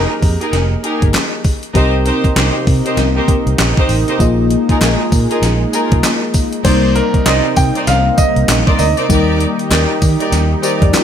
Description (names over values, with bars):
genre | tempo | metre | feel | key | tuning
R&B, new jack swing | 98 BPM | 4/4 | swing 61% on 16ths | unclear | A4 = 440 Hz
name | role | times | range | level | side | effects
clear grand piano | melody | 0.0-1.1, 6.6-10.0 s | Bb4 to G5 | -18 LUFS | right 2 dB | ping-pong delay
FM electric piano with soft pad layer | accompaniment | 0.0-11.0 s | G3 to Eb5 | -19 LUFS | left 4 dB | chorus, tremolo
rich studio string section | stabs | 0.0-10.8 s | Eb4 to D5 | -20 LUFS | equal | none
vintage muted fingered electric bass | bass | 0.0-10.9 s | F1 to Eb3 | -16 LUFS | equal | none
gated 80s digital drum machine | drums | 0.2-11.0 s | crash cymbal, handclaps, hi-hat, kick drum, snare drum, tambourine | -16 LUFS | equal | gated reverb, gated reverb snare, overdrive
group handclap | percussion | 1.1-11.0 s | none | barely audible | none | none
lush unison pad | sustained chords | 1.8-11.0 s | C3 to G4 | -22 LUFS | right 3 dB | chorus
room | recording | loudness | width
light reverb, digital ambience | none | -11 LUFS | side -9 dB against mid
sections
0.0-6.6 A section; 6.6-11.0 B section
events
none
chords
0.0 Fm11; 1.8 Cm7; 4.2 Bb7sus4; 6.6 Cm9; 9.1 Ebmaj7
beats
0.53 1.14 | 1.75 2.36 2.98 3.59 | 4.20 4.81 5.42 6.04 | 6.65 7.26 7.87 8.49 | 9.10 9.71 10.32 10.94